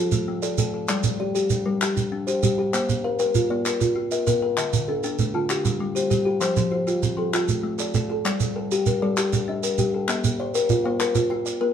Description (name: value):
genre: southern african traditional, mbira-style interlocking cycle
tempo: 130 BPM (dotted quarters)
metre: 12/8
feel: straight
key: G equiheptatonic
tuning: A4 = 440 Hz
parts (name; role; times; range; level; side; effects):
- kalimba; arpeggios; 0.0-11.7 s; D3 to D5; -25 LUFS; left 5 dB; none
- kalimba; arpeggios; 0.0-11.7 s; D3 to G5; -26 LUFS; right 3 dB; none
- shekere; percussion; 0.1-11.6 s; none; -26 LUFS; right 5 dB; none
- group handclap; percussion; 0.9-11.2 s; none; -29 LUFS; left 4 dB; none
room: moderate large studio reverb, RT60 0.9 s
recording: band playing live in one room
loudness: -21 LUFS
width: side -8 dB against mid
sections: 0.0-8.3 A section; 8.3-11.7 B section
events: none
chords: 0.0 Dm/A; 0.9 Gm; 2.7 Bb; 4.6 Dm; 5.5 G5; 6.4 F; 7.3 Dm/A; 8.3 Gm; 10.1 Bb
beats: 0.43 | 0.89 1.35 1.81 2.27 | 2.74 3.20 3.66 4.12 | 4.58 5.04 5.50 5.96 | 6.42 6.88 7.33 7.79 | 8.25 8.71 9.17 9.63 | 10.09 10.54 11.00 11.46